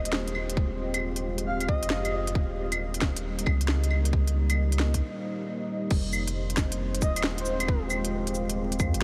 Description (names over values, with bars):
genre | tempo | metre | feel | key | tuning
future garage | 135 BPM | 4/4 | swing 66% on 16ths | F minor | A4 = 440 Hz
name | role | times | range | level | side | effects
deep dark ambient pad | sustained chords | 0.0-9.0 s | G3 to Eb5 | -35 LUFS | equal | chorus, built-in reverb, sidechain pumping
warm sub bass | bass | 0.0-9.0 s | Eb1 to F2 | -32 LUFS | equal | tube saturation, sidechain pumping
breathy flute-like synth lead | melody | 0.1-2.3, 7.0-7.8 s | C5 to F5 | -38 LUFS | equal | tremolo, analog chorus, diffuse ambient delay
organic electronic drum kit | drums | 0.1-9.0 s | cabasa, claves, crash cymbal, hi-hat, snare drum | -35 LUFS | equal | none
electronic kick drum | drums | 0.6-8.9 s | none | -29 LUFS | equal | none
room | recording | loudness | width
moderate huge ambient reverb, RT60 8.1 s | dreamy mix soaked in reverb, vinyl crackle | -28 LUFS | mono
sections
0.0-5.9 A section; 5.9-9.0 B section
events
break 5.0-5.9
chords
0.0 Fmadd9; 2.4 Eb; 5.9 Fmadd9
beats
0.13 | 0.57 1.02 1.46 1.91 | 2.35 2.80 3.24 3.69 | 4.13 4.58 5.02 5.46 | 5.91 6.35 6.80 7.24 | 7.69 8.13 8.57 9.02